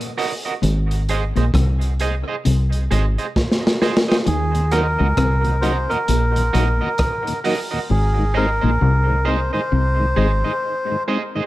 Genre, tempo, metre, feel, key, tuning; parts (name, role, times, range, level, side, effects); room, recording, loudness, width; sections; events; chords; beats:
dub reggae; 66 BPM; 4/4; swing 60% on 16ths; A4 = 440 Hz
crunchy breakbeat drum kit; drums; 0.0-7.7 s; hi-hat, kick drum, rim click, snare drum; -22 LUFS; equal
electric guitar at the edge of break-up; accompaniment; 0.2-11.4 s; Gb4 to Eb5; -26 LUFS; right 5 dB; tremolo, dub echo
clean electric guitar; riff; 0.6-10.3 s; Ab2 to Eb3; -26 LUFS; left 3 dB; dub echo
deep dub fingered electric bass; bass; 0.6-10.4 s; Ab1 to Eb2; -18 LUFS; equal
melodica; melody; 4.3-11.0 s; Ab4 to C5; -22 LUFS; equal; dub echo
mellow tonewheel organ; accompaniment; 4.5-11.4 s; Eb2 to Eb4; -26 LUFS; left 1 dB; slow rotary speaker, dub echo
light reverb, small room ambience; echo-heavy mix; -16 LUFS; side -16 dB against mid
0.0-11.5 A section
break 0.0-4.3; drum fill 3.4-4.3; part muted 7.9-11.5
0.0 Ebm; 0.6 Ab; 4.3 Ebm; 7.9 Ab
| 0.63 1.54 2.45 3.35 | 4.26 5.17 6.08 6.99 | 7.89 8.80 9.71 10.62